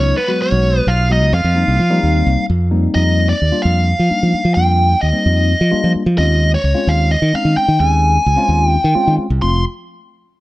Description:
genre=jazz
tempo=260 BPM (eighths)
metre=7/8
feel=straight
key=unclear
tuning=A4 = 440 Hz
part: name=biting lead guitar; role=melody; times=0.0-9.6 s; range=Cb5 to C6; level=-17 LUFS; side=equal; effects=overdrive
part: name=bright tenor saxophone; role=second line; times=0.0-2.5 s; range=Cb4 to F4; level=-24 LUFS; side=right 2 dB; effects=none
part: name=tine electric piano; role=accompaniment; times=0.0-9.6 s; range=F3 to Ab4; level=-20 LUFS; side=left 2 dB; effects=phaser
part: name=modern bright fingered electric bass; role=bass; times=0.0-9.6 s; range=F1 to F3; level=-14 LUFS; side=equal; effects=none
room=little or no reverb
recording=dark, warm production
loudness=-12 LUFS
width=side -18 dB against mid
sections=0.0-2.9 A section; 2.9-9.4 B section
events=none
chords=0.0 Db9sus4; 1.3 F9sus4; 2.9 F13sus4; 6.2 Eb13sus4; 9.4 F

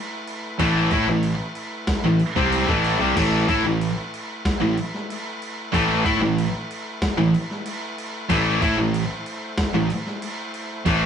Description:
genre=hard rock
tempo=94 BPM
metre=4/4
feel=straight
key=A minor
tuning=A4 = 440 Hz
part: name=overdriven tonewheel organ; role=sustained chords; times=0.0-11.1 s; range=A3 to C5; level=-36 LUFS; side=equal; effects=chorus vibrato, slow rotary speaker
part: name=dusty soul sampler-style drum kit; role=drums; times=0.3-11.0 s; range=crash cymbal, kick drum, snare drum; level=-28 LUFS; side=equal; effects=none
part: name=distorted electric guitar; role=riff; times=0.6-11.1 s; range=A2 to E4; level=-22 LUFS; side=left 4 dB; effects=overdrive
part: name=heavy high-gain guitar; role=riff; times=0.6-11.1 s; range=A2 to E4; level=-26 LUFS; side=right 1 dB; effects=distortion
part: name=overdriven electric guitar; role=riff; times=0.6-11.1 s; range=A2 to E4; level=-24 LUFS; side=right 5 dB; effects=none
part: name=fuzz fingered electric bass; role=bass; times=0.6-11.1 s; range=A1 to A2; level=-26 LUFS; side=equal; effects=overdrive
room=moderate small room reverb, RT60 0.5 s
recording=rough rehearsal-room recording, nothing above 10.7 kHz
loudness=-20 LUFS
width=side -8 dB against mid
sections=0.0-3.2 A section; 3.2-11.1 A section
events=kick and snare drop out 2.5-3.2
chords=0.0 Am

